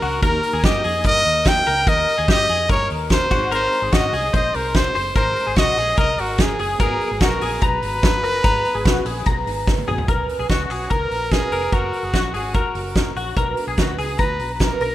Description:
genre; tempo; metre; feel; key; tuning
jangly indie pop; 146 BPM; 4/4; straight; unclear; A4 = 440 Hz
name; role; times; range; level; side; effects
clear trumpet; melody; 0.0-14.9 s; F#4 to G5; -21 LUFS; equal; slapback echo
mellow reed electric piano; accompaniment; 0.0-10.1 s; A#3 to G#4; -35 LUFS; right 4 dB; fast tremolo
picked twelve-string acoustic guitar; accompaniment; 0.0-14.9 s; G#2 to B4; -32 LUFS; right 6 dB; none
direct-recorded clean electric guitar; arpeggios; 0.0-14.9 s; F#4 to A#5; -25 LUFS; left 4 dB; ensemble chorus
vintage muted fingered electric bass; bass; 0.0-14.9 s; E#1 to G2; -28 LUFS; equal; none
loose indie drum kit; drums; 0.0-14.9 s; crash cymbal, hi-hat, kick drum, ride cymbal, snare drum, toms; -21 LUFS; equal; none
room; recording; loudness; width
light reverb, studio reverb; rough home demo mix; -17 LUFS; side -14 dB against mid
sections
0.0-10.1 A section; 10.1-14.9 B section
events
drum fill 9.7-10.1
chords
0.2 D#; 3.3 G#; 6.8 G#m7; 10.1 Bsus2; 11.7 F#; 13.4 Bm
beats
| 0.23 0.64 1.05 1.46 | 1.87 2.28 2.69 3.10 | 3.52 3.93 4.34 4.75 | 5.16 5.57 5.98 6.39 | 6.80 7.21 7.62 8.03 | 8.44 8.85 9.26 9.67 | 10.08 10.49 10.90 11.32 | 11.73 12.14 12.55 12.96 | 13.37 13.78 14.19 14.60

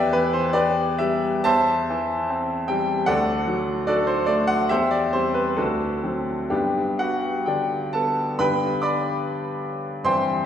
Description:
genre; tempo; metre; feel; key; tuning
classical, romantic character piece for solo piano; 61-79 BPM; 2/4; rubato; G major; A4 = 441 Hz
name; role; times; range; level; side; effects
bright grand piano; solo; 0.0-10.5 s; D2 to D6; -20 LUFS; equal; none
room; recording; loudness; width
wet recital hall reverb, RT60 1.7 s; recorded in a church or concert hall; -20 LUFS; side -9 dB against mid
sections
0.0-8.4 A section; 8.4-10.5 B section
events
none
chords
0.0 Em; 1.5 C/E; 3.1 D; 4.7 C/E; 5.6 D7; 6.5 G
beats
0.55 | 1.45 2.30 | 3.08 3.88 | 4.71 5.58 | 6.51 7.48 | 8.41 9.26 | 10.06

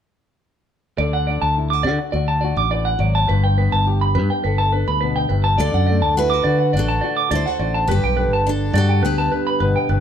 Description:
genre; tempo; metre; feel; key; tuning
highlife; 104 BPM; 4/4; straight; D mixolydian; A4 = 442 Hz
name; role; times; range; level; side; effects
nylon-string guitar; accompaniment; 1.0-10.0 s; G2 to A4; -26 LUFS; left 4 dB; none
electric guitar at the edge of break-up; arpeggios; 1.0-10.0 s; B4 to D6; -21 LUFS; right 1 dB; none
fingered electric bass; bass; 1.0-10.0 s; G1 to D3; -19 LUFS; equal; none
picked steel-string acoustic guitar; melody; 5.6-9.9 s; D4 to D5; -22 LUFS; right 2 dB; none
room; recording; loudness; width
moderate studio reverb, RT60 0.7 s; band playing live in one room; -16 LUFS; side -9 dB against mid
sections
1.0-5.6 A section; 5.6-10.0 B section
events
none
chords
1.0 D; 3.3 Gadd9; 5.6 D; 7.9 Gadd9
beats
| 0.99 1.56 2.14 2.71 | 3.29 3.86 4.44 5.01 | 5.59 6.16 6.74 7.31 | 7.88 8.46 9.04 9.61

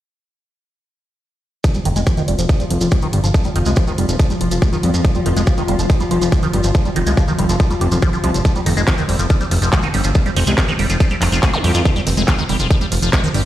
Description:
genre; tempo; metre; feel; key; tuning
psychedelic trance; 141 BPM; 4/4; straight; F minor; A4 = 441 Hz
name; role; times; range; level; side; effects
pulsing gated texture; sustained chords; 1.8-13.5 s; F3 to F4; -24 LUFS; left 1 dB; chorus, built-in reverb, sidechain pumping
liquid acid bass; riff; 1.6-13.4 s; Eb3 to G4; -21 LUFS; equal; phaser, auto-pan, sidechain pumping, ping-pong delay
big-room dance drum kit; drums; 1.6-13.4 s; handclaps, hi-hat; -26 LUFS; equal; studio reverb
electronic kick drum; drums; 1.6-13.2 s; none; -16 LUFS; equal; studio reverb
shekere; percussion; 1.6-13.3 s; none; -30 LUFS; right 3 dB; none
fat analog bass; bass; 1.9-13.4 s; F1 to F2; -17 LUFS; equal; none
zap; sound effects; 11.5-11.6 s; none; -26 LUFS; equal; none
room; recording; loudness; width
light reverb, digital ambience; played on a big sound system in a bare room, stone room reverb; -14 LUFS; side -13 dB against mid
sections
1.6-13.5 A section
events
filter sweep on acid bass 1.6-13.5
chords
1.6 F5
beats
| 1.64 2.07 2.49 2.92 | 3.34 3.77 4.20 4.62 | 5.05 5.47 5.90 6.32 | 6.75 7.17 7.60 8.03 | 8.45 8.88 9.30 9.73 | 10.15 10.58 11.00 11.43 | 11.85 12.28 12.71 13.13

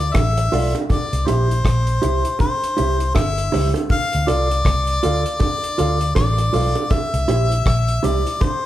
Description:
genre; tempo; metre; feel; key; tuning
roots reggae; 80 BPM; 4/4; swing 60% on 16ths; unclear; A4 = 442 Hz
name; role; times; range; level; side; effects
clear harmonica; melody; 0.0-8.7 s; C5 to F5; -22 LUFS; left 2 dB; none
mellow electric guitar; accompaniment; 0.0-8.2 s; E4 to F5; -24 LUFS; right 3 dB; none
vintage muted fingered electric bass; bass; 0.0-8.2 s; G1 to D2; -20 LUFS; equal; none
deep reggae drum kit; drums; 0.0-8.6 s; hi-hat, kick drum, rim click; -22 LUFS; equal; none
bongos; percussion; 0.1-8.6 s; none; -27 LUFS; right 4 dB; none
room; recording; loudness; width
moderate large studio reverb, RT60 1.4 s; band playing live in one room; -16 LUFS; side -13 dB against mid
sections
0.0-8.7 A section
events
none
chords
0.0 Dm; 0.9 C; 3.9 Dm; 6.9 C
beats
0.15 | 0.90 1.65 2.40 3.15 | 3.90 4.65 5.41 6.16 | 6.91 7.66 8.41

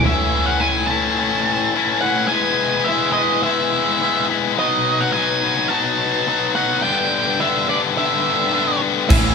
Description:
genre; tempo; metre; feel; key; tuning
quiet-loud alternative rock; 106 BPM; 4/4; straight; unclear; A4 = 440 Hz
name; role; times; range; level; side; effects
octave-fuzz lead guitar; melody; 0.0-9.3 s; D5 to A5; -21 LUFS; right 5 dB; distortion
crunchy overdriven guitar; riff; 0.0, 9.1-9.3 s; A2 to A3; -24 LUFS; right 7 dB; none
tight distorted guitar; riff; 0.0-9.3 s; G2 to E4; -18 LUFS; left 6 dB; distortion
fuzz picked electric bass; bass; 0.0, 9.1-9.3 s; A1; -22 LUFS; right 1 dB; overdrive
big rock drum kit; drums; 9.1-9.2 s; crash cymbal, kick drum; -19 LUFS; right 1 dB; none
room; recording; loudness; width
moderate stone room reverb, RT60 1.3 s; band playing live in one room; -16 LUFS; side -5 dB against mid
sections
0.0-9.3 A section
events
none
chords
0.0 A; 2.3 E; 4.6 B; 6.8 G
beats
| 0.04 0.61 1.18 1.75 | 2.31 2.88 3.44 4.01 | 4.58 5.14 5.71 6.28 | 6.84 7.41 7.97 8.54 | 9.11

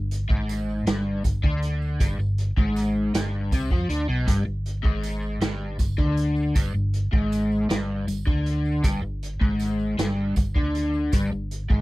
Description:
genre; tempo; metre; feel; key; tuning
psychedelic rock; 53 BPM (dotted quarters); 6/8; straight; unclear; A4 = 443 Hz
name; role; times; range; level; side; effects
overdriven electric guitar; riff; 0.0-11.8 s; G2 to F3; -26 LUFS; left 1 dB; rotary speaker
vintage muted fingered electric bass; bass; 0.0-11.8 s; G1 to F2; -28 LUFS; equal; none
vintage drum kit; drums; 0.1-11.8 s; hi-hat, kick drum, snare drum; -24 LUFS; equal; none
tambourine; percussion; 0.5-11.3 s; none; -47 LUFS; right 13 dB; none
room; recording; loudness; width
little or no reverb; none; -22 LUFS; side -20 dB against mid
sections
0.0-11.8 A section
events
none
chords
0.0 G5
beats
0.87 | 2.00 3.14 | 4.28 5.42 | 6.56 7.70 | 8.84 9.98 | 11.12

